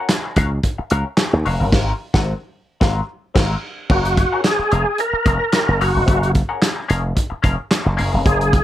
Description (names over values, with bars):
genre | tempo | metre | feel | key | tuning
funk | 110 BPM | 4/4 | straight | unclear | A4 = 440 Hz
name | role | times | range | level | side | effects
semi-hollow electric guitar | accompaniment | 0.0-8.6 s | C4 to Gb5 | -25 LUFS | left 5 dB | wah
warm soul drum kit | drums | 0.1-8.6 s | crash cymbal, handclaps, hi-hat, kick drum, snare drum | -18 LUFS | equal | none
slap bass with an envelope filter | bass | 0.4-8.6 s | F1 to Eb2 | -18 LUFS | equal | none
overdriven tonewheel organ | melody | 3.9-8.6 s | Gb4 to Bb4 | -18 LUFS | equal | chorus vibrato, fast rotary speaker
room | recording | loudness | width
light reverb | none | -16 LUFS | side -13 dB against mid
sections
0.0-3.9 A section; 3.9-8.6 B section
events
band accent 1.7-3.9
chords
0.0 Ebm9 (rootless); 1.7 Ab13; 3.9 Gbmaj9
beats
0.10 0.64 1.18 | 1.73 2.27 2.81 3.36 | 3.90 4.45 4.99 5.54 | 6.08 6.62 7.17 7.71 | 8.26